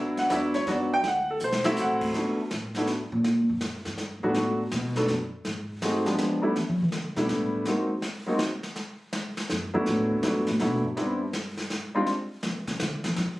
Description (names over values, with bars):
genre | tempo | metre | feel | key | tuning
jazz piano trio | 163 BPM | 3/4 | swing 66% on 8ths | G major | A4 = 440 Hz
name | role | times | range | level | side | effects
clear baby grand piano | melody | 0.0-12.1 s | F3 to G5 | -25 LUFS | equal | none
upright bass | bass | 0.0-13.4 s | A1 to F#3 | -31 LUFS | equal | none
jazz brush drum kit | drums | 0.2-13.4 s | brushed snare drum, crash cymbal, hi-hat, kick drum, snare drum | -33 LUFS | equal | none
room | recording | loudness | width
light reverb | recorded on a phone in the room, studio reverb, compression | -25 LUFS | side -18 dB against mid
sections
0.0-2.1 A section; 2.1-11.0 A section; 11.0-13.4 A section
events
grand piano solo 0.0-2.1; drum fill 1.4-1.8; upright bass solo 2.1-13.4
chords
0.0 Cmaj9#11; 1.0 D9; 2.1 D69; 3.2 Gmaj7sus2/F#; 4.4 Bm7; 5.5 G7b9; 6.6 A13sus4; 7.7 Ab9; 8.8 Gmaj13; 11.0 C5; 12.1 C#m